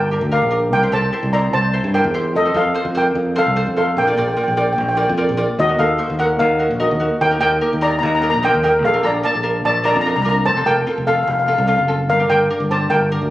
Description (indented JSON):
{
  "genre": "calypso",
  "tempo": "148 BPM",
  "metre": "4/4",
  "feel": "straight",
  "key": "Bb major",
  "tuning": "A4 = 440 Hz",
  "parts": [
    { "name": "steel pan", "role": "melody", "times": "0.0-13.3 s", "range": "Gb4 to Bb5", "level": "-17 LUFS", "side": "equal", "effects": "none" },
    { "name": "fingered electric bass", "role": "bass", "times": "0.0-13.3 s", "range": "F1 to G2", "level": "-21 LUFS", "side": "equal", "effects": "none" },
    { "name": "ukulele", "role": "accompaniment", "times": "0.1-13.2 s", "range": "C4 to D5", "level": "-23 LUFS", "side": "equal", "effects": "none" }
  ],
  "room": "moderate recital hall reverb, RT60 1.5 s",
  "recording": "recorded on a phone in the room, studio ambience, compression",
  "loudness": "-15 LUFS",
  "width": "side -15 dB against mid",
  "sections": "0.0-5.6 A section; 5.6-13.3 A section",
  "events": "none",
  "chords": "0.0 Gm7; 0.7 C7; 2.3 F; 4.0 Bb; 5.6 Ebm; 7.2 Eb; 8.8 Bbmaj7; 10.5 F; 12.1 Gm"
}